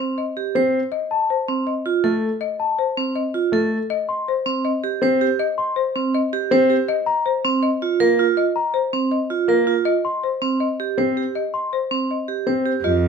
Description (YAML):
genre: classical, minimalist pattern music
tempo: 161 BPM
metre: 4/4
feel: straight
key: unclear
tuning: A4 = 442 Hz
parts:
  - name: folk marimba with medium hard mallets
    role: melody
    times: 0.0-13.1 s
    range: C5 to Eb5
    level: -25 LUFS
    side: left 8 dB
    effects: none
  - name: vibraphone with hard mallets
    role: arpeggios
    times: 0.0-13.1 s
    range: C4 to C5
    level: -20 LUFS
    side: right 6 dB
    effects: none
  - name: warm baby grand piano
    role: accompaniment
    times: 0.6-12.7 s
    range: A3 to C4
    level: -21 LUFS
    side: left 3 dB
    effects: none
  - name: celesta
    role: arpeggios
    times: 1.1-11.8 s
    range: A5 to C6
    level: -23 LUFS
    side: left 4 dB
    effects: none
  - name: clear cello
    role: bass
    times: 12.8-13.1 s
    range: F2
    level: -20 LUFS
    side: right 2 dB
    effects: none
room: light reverb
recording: dark, warm production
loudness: -18 LUFS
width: side -6 dB against mid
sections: 0.0-12.8 A section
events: none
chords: 0.0 Cm; 0.9 F7; 3.9 Cm; 6.9 Ebsus2; 9.9 Cm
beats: 0.17 0.55 | 0.92 1.29 1.66 2.04 | 2.41 2.78 3.15 3.53 | 3.90 4.27 4.64 5.02 | 5.39 5.76 6.13 6.51 | 6.88 7.25 7.63 8.00 | 8.37 8.74 9.12 9.49 | 9.86 10.23 10.61 10.98 | 11.35 11.72 12.10 12.47 | 12.84